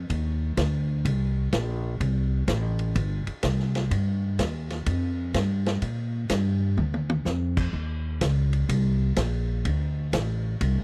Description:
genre	jazz, big band swing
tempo	126 BPM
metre	4/4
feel	swing 66% on 8ths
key	G minor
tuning	A4 = 440 Hz
part	upright bass	bass	0.0-10.8 s	G1 to Bb2	-24 LUFS	equal	none
part	vintage drum kit	drums	0.1-10.8 s	crash cymbal, hi-hat, kick drum, ride cymbal, snare drum, toms	-31 LUFS	equal	none
room	little or no reverb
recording	dry, close 1970s-style studio recording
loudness	-23 LUFS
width	side -34 dB against mid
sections	0.0-10.8 A section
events	drum fill 6.8-7.3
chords	none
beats	| 0.10 0.57 1.05 1.53 | 2.00 2.48 2.96 3.44 | 3.91 4.39 4.87 5.35 | 5.83 6.30 6.78 7.26 | 7.74 8.21 8.69 9.17 | 9.65 10.13 10.61

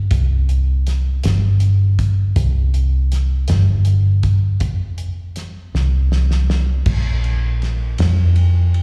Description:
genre	six-eight pop ballad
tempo	53 BPM (dotted quarters)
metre	6/8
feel	straight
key	unclear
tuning	A4 = 440 Hz
part	vintage muted fingered electric bass	bass	0.0-8.8 s	F1 to F2	-17 LUFS	equal	none
part	damped 70s drum kit	drums	0.1-8.8 s	crash cymbal, hi-hat, kick drum, ride cymbal, snare drum	-26 LUFS	equal	none
room	little or no reverb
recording	live gig heard through the venue's PA, recital hall reverb, small room ambience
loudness	-17 LUFS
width	mono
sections	0.0-6.9 A section; 6.9-8.8 B section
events	drum fill 5.7-6.9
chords	none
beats	| 0.11 1.24 | 2.36 3.49 | 4.61 5.74 | 6.87 7.99

